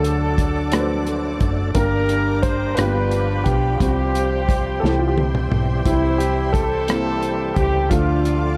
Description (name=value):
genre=slow gospel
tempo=58 BPM (dotted quarters)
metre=6/8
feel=straight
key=unclear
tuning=A4 = 440 Hz
part: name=clear horn section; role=melody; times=0.0-8.6 s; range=G3 to C5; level=-29 LUFS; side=equal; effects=dub echo
part: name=warm grand piano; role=melody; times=0.0-8.6 s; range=E4 to C5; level=-27 LUFS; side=equal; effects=dub echo
part: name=warm upright piano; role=accompaniment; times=0.0-8.6 s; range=G2 to C5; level=-27 LUFS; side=equal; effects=dub echo
part: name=clear studio string section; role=sustained chords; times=0.0-8.6 s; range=C5 to D6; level=-38 LUFS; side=equal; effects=none
part: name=overdriven tonewheel organ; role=sustained chords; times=0.0-8.6 s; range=D3 to Bb4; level=-31 LUFS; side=equal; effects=slow rotary speaker, chorus vibrato
part: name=hollow-body short-scale fingered electric bass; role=bass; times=0.0-8.6 s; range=F#1 to D2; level=-25 LUFS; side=equal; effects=none
part: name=warm soul drum kit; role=drums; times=0.0-8.4 s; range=hi-hat, kick drum, rim click, snare drum, toms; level=-25 LUFS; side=equal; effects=none
room=little or no reverb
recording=echo-heavy mix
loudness=-20 LUFS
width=mono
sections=0.0-8.6 A section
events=drum fill 4.8-5.9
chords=0.0 D; 1.8 Gm; 2.8 G7; 3.8 Csus4; 4.8 C; 7.9 Dm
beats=0.73 | 1.75 2.78 | 3.80 4.83 | 5.86 6.88 | 7.91